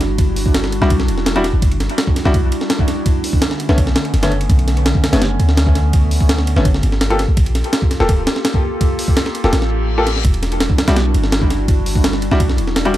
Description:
drum and bass, jungle; 167 BPM; 4/4; straight; E dorian; A4 = 442 Hz
warbly tape-like pad; sustained chords; 0.0-12.7 s; D3 to A4; -23 LUFS; right 1 dB; chorus, built-in reverb
warm 808-style bass; bass; 0.0-13.0 s; D1 to D2; -17 LUFS; equal; tube saturation
breakbeat sampler-style drum kit; drums; 0.0-13.0 s; hi-hat, kick drum, ride cymbal, snare drum; -16 LUFS; equal
warm grand piano; stabs; 0.8-12.9 s; D3 to A4; -21 LUFS; left 1 dB; dub echo
reverse cymbal; sound effects; 9.7-10.2 s; -27 LUFS; left 7 dB
digital ambience; dry, gritty hardware recording; -13 LUFS; side -14 dB against mid
0.0-13.0 A section
reverse cymbal 9.7-10.2
0.0 Em9; 3.1 Bm9; 6.7 Gm9; 10.2 Em9

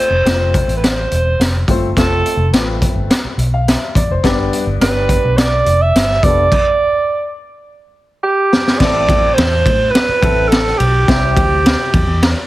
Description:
uptempo 1960s-style soul; 105 BPM; 4/4; straight; A4 = 440 Hz
breathy alto saxophone; melody; 0.0-12.5 s; G4 to E5; -15 LUFS; right 2 dB
clear grand piano; accompaniment; 0.0-11.9 s; G2 to F5; -22 LUFS; left 4 dB
vintage muted fingered electric bass; bass; 0.1-12.3 s; E1 to A2; -17 LUFS; equal
raw garage drum kit; drums; 0.3-12.4 s; crash cymbal, hi-hat, kick drum, ride cymbal, snare drum; -15 LUFS; equal
light reverb; heavily compressed radio sound, multiband compression; -11 LUFS; side -16 dB against mid
0.0-8.8 A section; 8.8-12.5 B section
stop 6.5-8.8; drum fill 7.7-8.8
0.0 F; 4.2 G; 8.8 Am; 11.1 C

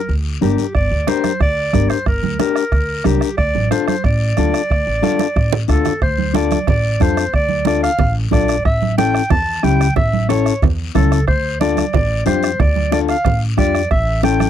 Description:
latin, cumbia; 182 BPM; 4/4; straight; D minor, D harmonic minor from 6.0 s; A4 = 440 Hz
warm clarinet; melody; 0.0-14.5 s; G4 to A5; -20 LUFS; right 1 dB
upright bass; bass; 0.1-14.4 s; G1 to F2; -19 LUFS; equal
congas; percussion; 0.1-14.5 s; -22 LUFS; right 13 dB
guiro; percussion; 0.1-14.5 s; -34 LUFS; left 12 dB
mellow electric guitar; accompaniment; 0.4-14.5 s; C#4 to Bb4; -18 LUFS; left 13 dB
bombo; percussion; 0.7-14.5 s; -19 LUFS; right 2 dB
little or no reverb; dry, close 1970s-style studio recording; -14 LUFS; side -10 dB against mid
0.0-6.0 A section; 6.0-14.5 B section
drum fill 5.0-6.0
0.0 Gm; 3.4 Dm; 8.7 A7; 11.3 Dm; 13.9 A7

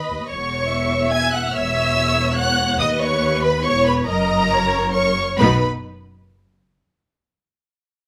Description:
quick classical-period movement for string orchestra; 141 BPM; 3/4; uneven beats; B major; A4 = 440 Hz
warm studio violin section; melody; 0.0-5.6 s; A#5 to G#6; -24 LUFS; equal
warm symphonic violin section; second line; 0.0-5.6 s; A#4 to G#5; -24 LUFS; equal
rich studio viola section; accompaniment; 0.0-5.6 s; B3 to E5; -27 LUFS; equal
clear symphonic double bass section; bass; 0.1-5.6 s; E1 to D#2; -28 LUFS; equal
rich symphonic cello section; bass; 0.1-5.6 s; D#2 to B2; -27 LUFS; equal
moderate large studio reverb, RT60 0.9 s; -19 LUFS; mono
0.0-5.4 A section; 5.4-6.7 B section
slowing down 2.2-5.4
0.3 C#m/E; 2.8 B/D#; 3.6 C#m7/E; 4.1 F#; 5.4 B

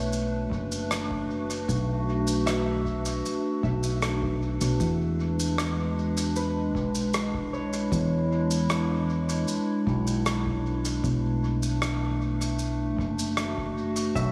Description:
ambient dub; 77 BPM; 4/4; straight; E mixolydian; A4 = 440 Hz
warbly tape-like pad; sustained chords; 0.0-14.3 s; G#3 to B4; -32 LUFS; equal; chorus, built-in reverb
concert harp; arpeggios; 0.0-14.3 s; B4 to E5; -40 LUFS; equal; tape echo
fingered electric bass; bass; 0.0-14.3 s; F#1 to E2; -30 LUFS; equal
shaker and rim click; drums; 0.1-14.3 s; -36 LUFS; equal; dub echo
electronic kick drum; drums; 0.5-14.3 s; -40 LUFS; equal
light reverb, small room ambience; studio reverb; -27 LUFS; mono
0.0-4.8 A section; 4.8-14.3 B section
filter sweep on harp 0.0-4.8
0.0 Bm7; 4.8 E7; 11.0 Bm7

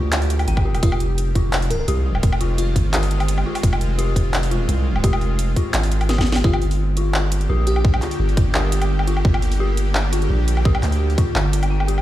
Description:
half-time drum and bass; 171 BPM; 4/4; swing 53% on 16ths, half-time; G phrygian; A4 = 438 Hz
bowed-like drone; sustained chords; 0.0-12.0 s; D3 to G4; -28 LUFS; right 1 dB; built-in reverb, sidechain pumping
dark detuned synth bell; arpeggios; 0.0-12.0 s; F4 to G5; -28 LUFS; left 3 dB; chorus, vintage 12-bit sampler grit, tape echo
long sustained 808-style bass; bass; 0.0-12.0 s; F1 to D2; -19 LUFS; equal; tube saturation
drum and bass drum kit; drums; 0.1-12.0 s; handclaps, hi-hat, snare drum, woodblock; -25 LUFS; equal; overdrive
electronic kick drum; drums; 0.6-11.3 s; -18 LUFS; equal; overdrive
bell-like FM electric piano; melody; 0.8-2.9, 6.4-8.2 s; F4 to Bb4; -30 LUFS; equal; chorus, cassette tape, tape echo
little or no reverb; played on a big sound system in a bare room, stone room reverb; -17 LUFS; side -14 dB against mid
0.0-6.4 A section; 6.4-12.0 A section
drop 0.0-6.4, 6.4-12.0; drum fill 6.1-6.4
0.0 Gm; 0.8 Fm7; 6.4 Gm

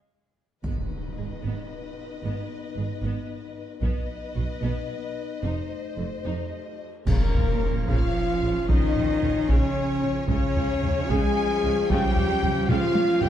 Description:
cinematic, epic orchestral film score; 75 BPM (dotted quarters); 6/8; straight; G# dorian, Bb dorian from 7.1 s; A4 = 436 Hz
rich symphonic violin section; melody; 0.6-13.3 s; Bb4 to Ab5; -38 LUFS; left 5 dB
rich symphonic violin section; second line; 0.6-13.3 s; Bb4 to Ab5; -37 LUFS; left 5 dB
mellow French horn section; sustained chords; 0.6-13.3 s; A3 to Ab4; -29 LUFS; left 3 dB
rich symphonic cello section; bass; 0.6-13.3 s; F2 to Ab3; -32 LUFS; right 3 dB
warm symphonic double bass section; bass; 0.6-13.3 s; F1 to Db2; -31 LUFS; right 3 dB
taiko ensemble; drums; 0.6-13.3 s; -26 LUFS; equal
triangle, cymbal swell, clash cymbals and concert bass drum; percussion; 0.6-8.1 s; -32 LUFS; equal
impact; sound effects; 0.6-2.2, 7.1-8.7 s; -37 LUFS; equal
clear symphonic viola section; accompaniment; 0.7-13.3 s; Db3 to A4; -36 LUFS; right 1 dB
small flute group; second line; 7.1-13.3 s; Bb4 to Ab5; -34 LUFS; left 3 dB
dark trombone section; sustained chords; 7.1-13.3 s; F3 to Db4; -35 LUFS; right 3 dB
pipe organ, full organ; sustained chords; 7.1-13.3 s; Db4 to F5; -37 LUFS; right 2 dB
warm trumpet; stabs; 7.1-13.3 s; Bb3 to Ab4; -34 LUFS; right 1 dB
timpani; percussion; 7.1-7.9 s; Bb2; -34 LUFS; left 2 dB
moderate scoring stage reverb, RT60 1.7 s; dark, warm production; -23 LUFS; side -10 dB against mid
0.6-7.1 A section; 7.1-13.3 B section
break 0.0-0.6; drum fill 0.0-0.6, 12.7-13.3; impact 0.6-2.2, 7.1-8.7; band accent 7.1-7.6
0.0 N.C.; 0.6 G#m; 3.8 B; 5.4 F7; 7.1 Bbm; 10.3 Db

